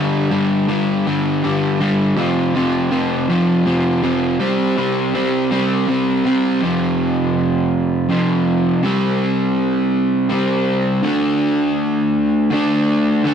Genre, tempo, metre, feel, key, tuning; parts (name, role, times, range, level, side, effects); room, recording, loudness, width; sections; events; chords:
rock; 54 BPM (dotted quarters); 6/8; straight; A4 = 439 Hz
crunchy overdriven guitar; solo; 0.0-13.3 s; F2 to D4; -15 LUFS; equal
wet stone room reverb, RT60 1.3 s; rough rehearsal-room recording; -15 LUFS; side -8 dB against mid
0.0-6.6 A section; 6.6-13.3 B section
0.0 G5; 2.2 F5; 4.4 C5; 6.6 F5; 8.8 C5; 11.0 D5